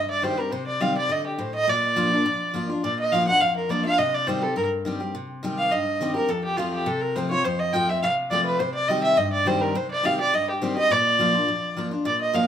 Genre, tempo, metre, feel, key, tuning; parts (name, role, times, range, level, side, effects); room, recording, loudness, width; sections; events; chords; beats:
bluegrass; 208 BPM; 4/4; straight; C dorian; A4 = 440 Hz
dark fiddle; melody; 0.0-12.5 s; F4 to G5; -22 LUFS; right 1 dB
picked steel-string acoustic guitar; accompaniment; 0.0-12.5 s; F2 to G4; -26 LUFS; left 1 dB
moderate large studio reverb, RT60 0.9 s; band playing live in one room; -21 LUFS; side -9 dB against mid
0.0-5.1 A section; 5.1-12.5 A section
0.0 Cm; 1.7 Bb; 4.0 Cm; 6.3 F; 8.6 Cm; 10.9 Bb
0.24 | 0.53 0.82 1.10 1.39 | 1.68 1.97 2.26 2.55 | 2.84 3.12 3.41 3.70 | 3.99 4.28 4.57 4.86 | 5.14 5.43 5.72 6.01 | 6.30 6.59 6.88 7.16 | 7.45 7.74 8.03 8.32 | 8.61 8.89 9.18 9.47 | 9.76 10.05 10.33 10.62 | 10.91 11.20 11.49 11.78 | 12.06 12.35